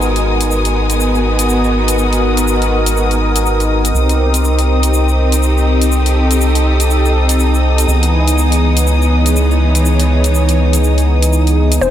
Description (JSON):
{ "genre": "deep house", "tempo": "122 BPM", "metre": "4/4", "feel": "swing 61% on 16ths", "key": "unclear", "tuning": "A4 = 440 Hz", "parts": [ { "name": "warm analog pad", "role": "sustained chords", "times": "0.0-11.9 s", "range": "Fb3 to Bb4", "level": "-16 LUFS", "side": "left 1 dB", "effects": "chorus" }, { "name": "rubbery square bass", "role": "bass", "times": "0.0-11.9 s", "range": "F1 to Db2", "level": "-13 LUFS", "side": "equal", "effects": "tube saturation" }, { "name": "electronic shaker and hi-hat", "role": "drums", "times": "0.0-11.9 s", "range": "none", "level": "-21 LUFS", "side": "left 1 dB", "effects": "none" }, { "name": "warm studio string section", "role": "texture", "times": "0.0-11.9 s", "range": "Fb3 to Eb6", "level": "-21 LUFS", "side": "left 1 dB", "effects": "none" }, { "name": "warm symphonic violin section", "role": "texture", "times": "0.0-11.9 s", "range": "Ab3 to Eb6", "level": "-23 LUFS", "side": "left 1 dB", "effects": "none" }, { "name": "mallet-like synth pluck", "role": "melody", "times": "11.8-11.9 s", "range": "C5", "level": "-12 LUFS", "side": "left 4 dB", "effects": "chorus" } ], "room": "light reverb", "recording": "none", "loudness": "-11 LUFS", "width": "side -11 dB against mid", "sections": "0.0-11.9 A section", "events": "none", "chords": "0.0 Abm7; 3.9 Cm7; 7.9 Dbm7", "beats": "| 0.01 0.50 0.99 1.49 | 1.98 2.47 2.96 3.45 | 3.94 4.44 4.93 5.42 | 5.91 6.40 6.90 7.39 | 7.88 8.37 8.86 9.36 | 9.85 10.34 10.83 11.32 | 11.81" }